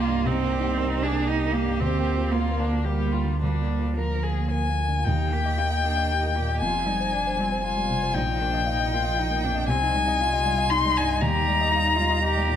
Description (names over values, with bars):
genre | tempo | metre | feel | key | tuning
neoclassical piano and strings | 117 BPM | 3/4 | rubato | Eb major | A4 = 440 Hz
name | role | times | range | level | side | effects
warm violin | melody | 0.0-12.6 s | D4 to C6 | -26 LUFS | left 4 dB | none
rich cello | second line | 0.0-12.6 s | F3 to G4 | -30 LUFS | right 6 dB | none
felt-muted upright piano | accompaniment | 0.0-12.6 s | Bb1 to F5 | -29 LUFS | left 1 dB | none
warbly tape-like pad | sustained chords | 0.0-12.6 s | F3 to F5 | -35 LUFS | equal | chorus, built-in reverb
punchy sub bass | bass | 0.0-12.6 s | F1 to Eb2 | -28 LUFS | equal | none
room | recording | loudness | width
moderate scoring stage reverb, RT60 1.7 s | none | -22 LUFS | side -9 dB against mid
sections
0.0-5.0 A section; 5.0-12.6 B section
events
none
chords
0.0 Cm7; 1.8 Bb/D; 5.0 Eb; 6.6 Fmadd9; 8.2 Bbsus4; 9.7 Abmaj7/C; 11.2 Eb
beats
| 0.26 0.77 1.29 | 1.80 2.33 2.86 | 3.41 3.96 4.51 | 5.05 5.57 6.10 | 6.61 7.13 7.64 | 8.16 8.68 9.19 | 9.70 10.21 10.71 | 11.22 11.72 12.23